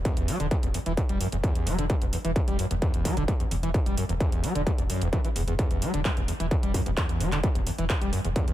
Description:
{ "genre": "driving peak-time techno", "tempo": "130 BPM", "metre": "4/4", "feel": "straight", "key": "E minor", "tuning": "A4 = 441 Hz", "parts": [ { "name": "saturated sub bass", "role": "bass", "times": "0.0-8.5 s", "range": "E1", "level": "-31 LUFS", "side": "equal", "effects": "tube saturation, sidechain pumping, low-pass filter" }, { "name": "screaming distorted acid line", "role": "riff", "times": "0.1-8.5 s", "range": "E2 to G3", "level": "-29 LUFS", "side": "equal", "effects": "distortion, lush chorus, sidechain pumping, ping-pong delay" }, { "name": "electronic kick drum", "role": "drums", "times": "0.1-8.5 s", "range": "none", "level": "-26 LUFS", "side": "equal", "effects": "distortion, overdrive" }, { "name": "techno drum kit", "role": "drums", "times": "0.1-8.5 s", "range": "handclaps, hi-hat", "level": "-35 LUFS", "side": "right 1 dB", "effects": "overdrive, sidechain pumping on hats, sidechain pumping on cymbals" } ], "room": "little or no reverb", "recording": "none", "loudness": "-24 LUFS", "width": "side -13 dB against mid", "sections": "0.0-8.5 A section", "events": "none", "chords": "0.0 Em", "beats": "| 0.05 0.51 0.97 1.44 | 1.90 2.36 2.82 3.28 | 3.74 4.21 4.67 5.13 | 5.59 6.05 6.51 6.97 | 7.44 7.90 8.36" }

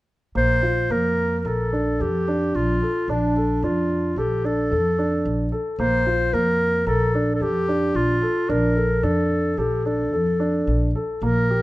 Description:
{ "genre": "contemporary instrumental, contemporary", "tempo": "110 BPM", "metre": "5/4", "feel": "straight", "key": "Bb major", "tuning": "A4 = 440 Hz", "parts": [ { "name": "dark clarinet", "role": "melody", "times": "0.4-11.6 s", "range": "D4 to C5", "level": "-23 LUFS", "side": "equal", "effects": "none" }, { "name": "dark grand piano", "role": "arpeggios", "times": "0.4-11.6 s", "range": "Bb3 to Bb4", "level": "-24 LUFS", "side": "equal", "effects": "none" }, { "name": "upright bass", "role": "bass", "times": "0.4-11.6 s", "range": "Bb1 to F2", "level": "-24 LUFS", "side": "equal", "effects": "none" } ], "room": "light reverb", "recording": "close, detailed microphones", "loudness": "-19 LUFS", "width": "side -18 dB against mid", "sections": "0.3-11.6 A section", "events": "none", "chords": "0.3 Bbmaj7", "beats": "| 0.35 0.90 1.45 2.00 2.54 | 3.08 3.63 4.17 4.71 5.25 | 5.79 6.33 6.87 7.41 7.95 | 8.49 9.03 9.58 10.12 10.67 | 11.22" }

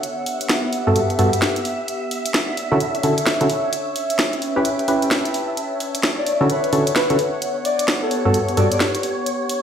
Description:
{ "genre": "UK garage, two-step garage", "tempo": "130 BPM", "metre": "4/4", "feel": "swing 62% on 16ths", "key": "unclear", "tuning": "A4 = 440 Hz", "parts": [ { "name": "soft string machine", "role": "sustained chords", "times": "0.0-9.6 s", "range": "C#5 to E5", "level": "-27 LUFS", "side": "equal", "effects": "phaser, ensemble chorus" }, { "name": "garage drum kit", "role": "drums", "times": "0.0-9.6 s", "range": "hi-hat, snare drum", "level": "-22 LUFS", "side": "equal", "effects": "none" }, { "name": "warbly tape-like pad", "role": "texture", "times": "0.0-9.6 s", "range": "B3 to A5", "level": "-25 LUFS", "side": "equal", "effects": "chorus, built-in reverb" }, { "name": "percussive organ stab", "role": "stabs", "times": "0.9-8.7 s", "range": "G2 to B4", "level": "-20 LUFS", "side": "equal", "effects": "chorus, ping-pong delay" }, { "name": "breathy flute-like synth lead", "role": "melody", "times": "6.2-8.8 s", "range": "A4 to D5", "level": "-23 LUFS", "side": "left 3 dB", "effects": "wide subtle chorus, ping-pong delay" } ], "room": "wet studio reverb, RT60 0.5 s", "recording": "played on a big sound system in a bare room, stone room reverb", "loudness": "-17 LUFS", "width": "side -8 dB against mid", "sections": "0.0-9.6 A section", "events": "none", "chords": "0.0 Gmaj7; 1.9 Dmaj9; 3.7 A9/C#; 5.6 Dmaj9; 7.2 Gmaj7", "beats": "| 0.03 0.50 0.96 1.42 | 1.88 2.34 2.80 3.27 | 3.73 4.19 4.65 5.11 | 5.57 6.03 6.50 6.96 | 7.42 7.88 8.34 8.80 | 9.27" }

